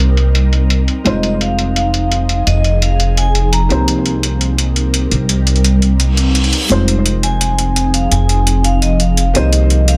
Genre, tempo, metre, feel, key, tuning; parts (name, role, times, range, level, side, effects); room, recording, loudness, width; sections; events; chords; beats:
liquid drum and bass; 170 BPM; 4/4; straight; F minor; A4 = 440 Hz
felt-muted upright piano; accompaniment; 0.0-10.0 s; Ab3 to C5; -23 LUFS; equal; delay
ethereal airy pad; sustained chords; 0.0-10.0 s; F3 to Bb4; -22 LUFS; equal; ensemble chorus, built-in reverb, phaser
upright bass; bass; 0.0-10.0 s; F1 to C2; -16 LUFS; equal
electronic hi-hat; drums; 0.0-9.9 s; -22 LUFS; equal; low-pass filter on hats, low-pass filter on room
vibraphone with medium hard mallets; melody; 1.1-3.9, 7.2-10.0 s; Eb5 to Bb5; -23 LUFS; equal; digital delay
reverse cymbal; sound effects; 6.1-6.7 s; -22 LUFS; equal
light reverb, studio reverb; -14 LUFS; mono
0.0-10.0 A section
reverse cymbal 6.1-6.7
0.0 Cm7; 1.1 Fm7; 3.7 Cm7; 6.7 Fm7; 9.3 Cm7
0.00 0.35 0.70 | 1.06 1.41 1.76 2.11 | 2.47 2.82 3.17 3.53 | 3.88 4.23 4.58 4.94 | 5.29 5.64 6.00 6.35 | 6.70 7.06 7.41 7.76 | 8.11 8.47 8.82 9.17 | 9.53 9.88